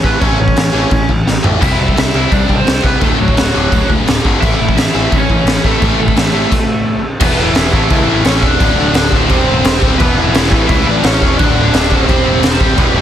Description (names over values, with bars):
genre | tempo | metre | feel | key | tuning
punk rock | 172 BPM | 4/4 | straight | unclear | A4 = 440 Hz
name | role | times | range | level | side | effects
overdriven electric guitar | melody | 0.0-13.0 s | E3 to E5 | -17 LUFS | right 1 dB | none
distorted electric guitar | riff | 0.0-13.0 s | D2 to C4 | -17 LUFS | left 2 dB | overdrive
growling picked electric bass | bass | 0.0-13.0 s | D1 to C#2 | -18 LUFS | equal | overdrive
raw garage drum kit | drums | 0.0-12.9 s | crash cymbal, kick drum, snare drum, toms | -13 LUFS | equal | none
heavy high-gain guitar | riff | 1.6-13.0 s | D2 to C4 | -19 LUFS | equal | distortion
room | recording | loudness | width
little or no reverb | dense, heavily limited modern master | -10 LUFS | side -10 dB against mid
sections
0.0-7.2 A section; 7.2-13.0 B section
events
drum fill 1.3-1.6; stop 6.5-7.2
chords
0.0 A; 1.6 C; 3.0 D; 4.4 A; 7.2 E5; 7.7 A; 8.6 D5; 9.3 C/E; 10.0 E5; 10.5 A; 11.4 D5; 12.1 C/E